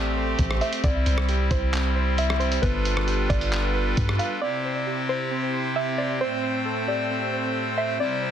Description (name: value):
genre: hip hop, atmospheric cloud-rap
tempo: 134 BPM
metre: 4/4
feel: half-time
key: C major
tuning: A4 = 440 Hz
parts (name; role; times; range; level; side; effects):
- pipe organ, clarinet reed; sustained chords; 0.0-8.3 s; A2 to G5; -27 LUFS; left 1 dB; sidechain pumping
- warbly lo-fi synth keys; arpeggios; 0.0-8.3 s; B3 to C5; -31 LUFS; right 2 dB; chorus, low-pass filter, tape echo
- soft 808-style bass; bass; 0.0-4.2 s; G1 to G2; -25 LUFS; equal; none
- lo-fi sampler-style drum kit; drums; 0.4-4.3 s; handclaps, hi-hat, kick drum, rim click; -28 LUFS; equal; soft clipping on snare
- soft round pluck; melody; 0.6-8.3 s; B4 to F5; -29 LUFS; right 1 dB; chorus, low-pass filter, tape echo
room: little or no reverb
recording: dense, heavily limited modern master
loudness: -22 LUFS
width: side -9 dB against mid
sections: 0.0-4.4 A section; 4.4-8.3 B section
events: none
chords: 0.0 Am7; 0.8 C; 2.6 G7; 4.4 C; 6.2 Am7